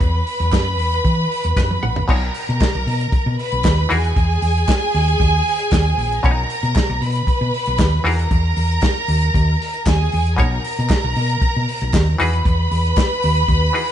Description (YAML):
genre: disco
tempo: 116 BPM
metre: 4/4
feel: straight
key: B major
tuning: A4 = 440 Hz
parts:
  - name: rich studio violin section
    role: second line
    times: 0.0-13.9 s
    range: G#4 to B5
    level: -21 LUFS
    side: right 1 dB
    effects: none
  - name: muted clav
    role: accompaniment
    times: 0.0-13.9 s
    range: A#2 to F#5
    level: -23 LUFS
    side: left 2 dB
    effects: none
  - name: hollow-body short-scale fingered electric bass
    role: bass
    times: 0.0-13.7 s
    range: A#1 to E3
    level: -19 LUFS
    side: equal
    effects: none
  - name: warm soul drum kit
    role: drums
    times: 0.0-13.9 s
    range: crash cymbal, hi-hat, kick drum, snare drum, toms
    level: -20 LUFS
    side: equal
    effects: none
  - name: group handclap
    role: percussion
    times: 0.5-13.1 s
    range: none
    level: -34 LUFS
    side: left 2 dB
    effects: none
room: moderate stone room reverb, RT60 1.4 s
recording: band playing live in one room, nothing above 10.6 kHz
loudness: -15 LUFS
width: side -10 dB against mid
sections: 0.0-2.1 A section; 2.1-13.9 B section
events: clav fill 1.3-2.1; drum fill 1.6-2.1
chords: 0.0 Emaj9; 2.1 Bmaj9; 3.9 Emaj9#11; 6.2 Bmaj9; 8.1 Emaj9#11; 10.4 Bmaj9; 12.2 Emaj9